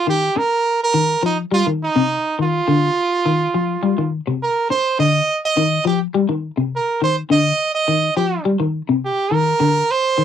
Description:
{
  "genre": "afrobeat",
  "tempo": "104 BPM",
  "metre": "4/4",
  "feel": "straight",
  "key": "C minor",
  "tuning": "A4 = 440 Hz",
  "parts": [
    { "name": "brilliant trumpet", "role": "melody", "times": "0.0-10.2 s", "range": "Eb4 to Eb5", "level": "-18 LUFS", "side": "right 4 dB", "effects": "none" },
    { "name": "electric guitar at the edge of break-up", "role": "arpeggios", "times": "0.1-10.2 s", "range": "C3 to G3", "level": "-18 LUFS", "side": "left 4 dB", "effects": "analog chorus" }
  ],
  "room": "light reverb",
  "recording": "dry, close 1970s-style studio recording",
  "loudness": "-16 LUFS",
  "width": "side -9 dB against mid",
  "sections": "0.0-10.2 A section",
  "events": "none",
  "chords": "0.0 Cmadd9"
}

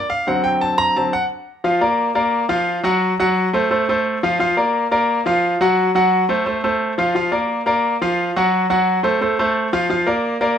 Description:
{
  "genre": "latin",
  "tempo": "174 BPM",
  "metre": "4/4",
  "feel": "straight",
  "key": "unclear",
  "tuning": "A4 = 440 Hz",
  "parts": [
    { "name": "bright grand piano", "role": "solo", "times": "0.0-10.6 s", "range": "D3 to Bb5", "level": "-16 LUFS", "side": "equal", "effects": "none" }
  ],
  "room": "moderate large studio reverb, RT60 0.9 s",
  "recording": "band playing live in one room",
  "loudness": "-16 LUFS",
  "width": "side -8 dB against mid",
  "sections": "0.0-1.6 A section; 1.6-10.6 B section",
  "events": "grand piano solo 0.0-1.6",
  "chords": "0.3 D7; 1.6 F#maj7#5/E#; 3.0 F#dim; 4.4 F#maj7#5/E#; 5.8 F#dim; 7.2 F#maj7#5/E#; 8.5 F#dim; 9.9 F#maj7b13/E# (rootless)"
}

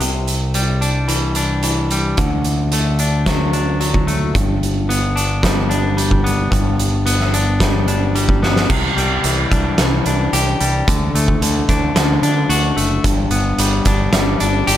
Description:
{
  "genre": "post-rock",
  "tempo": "110 BPM",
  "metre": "4/4",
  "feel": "straight",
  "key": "G major",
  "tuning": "A4 = 438 Hz",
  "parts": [
    { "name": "clean electric guitar", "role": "arpeggios", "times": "0.0-14.8 s", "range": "G2 to G4", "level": "-19 LUFS", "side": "left 3 dB", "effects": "slapback echo" },
    { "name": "growling fingered electric bass", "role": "bass", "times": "0.0-14.8 s", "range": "F#1 to D3", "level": "-19 LUFS", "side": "equal", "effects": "overdrive" },
    { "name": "oversized low-tuned drum kit", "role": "drums", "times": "0.0-14.8 s", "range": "crash cymbal, hi-hat, kick drum, snare drum", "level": "-18 LUFS", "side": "right 1 dB", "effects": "none" }
  ],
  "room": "light reverb, studio ambience",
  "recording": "none",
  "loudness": "-14 LUFS",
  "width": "side -12 dB against mid",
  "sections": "0.0-8.7 A section; 8.7-14.8 B section",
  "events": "drum fill 8.4",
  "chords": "0.0 Cadd9; 2.2 D; 4.4 G; 8.7 Cadd9; 10.9 D; 13.1 G"
}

